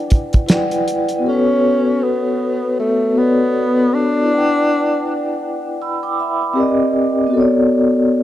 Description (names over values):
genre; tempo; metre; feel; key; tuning
lo-fi hip hop; 79 BPM; 4/4; swing 57% on 16ths; unclear; A4 = 445 Hz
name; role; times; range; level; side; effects
breathy tenor saxophone; melody; 0.0-5.4 s; A3 to D4; -18 LUFS; equal; tape echo
vibraphone with soft mallets; accompaniment; 0.0-8.2 s; B3 to E6; -16 LUFS; left 1 dB; none
cloth-damped thuddy drum kit; drums; 0.1-1.2 s; hi-hat, kick drum, snare drum; -15 LUFS; right 1 dB; none
room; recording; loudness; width
moderate plate reverb, RT60 2.7 s; dark, warm production; -14 LUFS; side -13 dB against mid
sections
0.0-1.3 A section; 1.3-8.2 B section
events
none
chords
0.0 Em7; 1.3 Bm9; 4.3 Em7; 6.6 Cm9; 7.3 Bm9